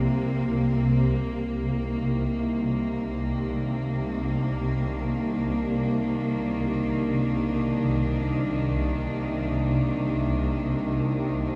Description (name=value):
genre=ambient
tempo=free time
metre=none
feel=none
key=C minor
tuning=A4 = 440 Hz
part: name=warm studio cello section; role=sustained chords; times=0.0-11.6 s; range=C2 to D4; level=-29 LUFS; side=equal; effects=shimmer reverb
part: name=swarming drone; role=drone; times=0.0-11.6 s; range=C2 to C3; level=-29 LUFS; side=equal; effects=built-in reverb
room=wet echo chamber reverb, RT60 2.7 s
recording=none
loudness=-26 LUFS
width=mono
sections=0.0-1.6 A section; 1.6-11.6 B section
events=none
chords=0.0 C7sus4; 1.6 Cm7